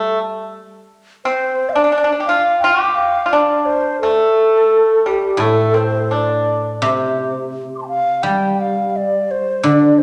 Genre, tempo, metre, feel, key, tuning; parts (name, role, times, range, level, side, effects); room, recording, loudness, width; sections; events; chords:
chinese traditional; 86 BPM; 4/4; rubato; D yu mode; A4 = 440 Hz
bright xiao; melody; 0.0-10.0 s; G4 to D6; -19 LUFS; equal
pipa; second line; 0.0-6.6 s; G3 to G4; -20 LUFS; equal
guzheng; accompaniment; 0.0-0.5, 5.4-10.0 s; A2 to G3; -20 LUFS; equal
wet recital hall reverb, RT60 1.6 s; -16 LUFS; mono
0.0-10.0 A section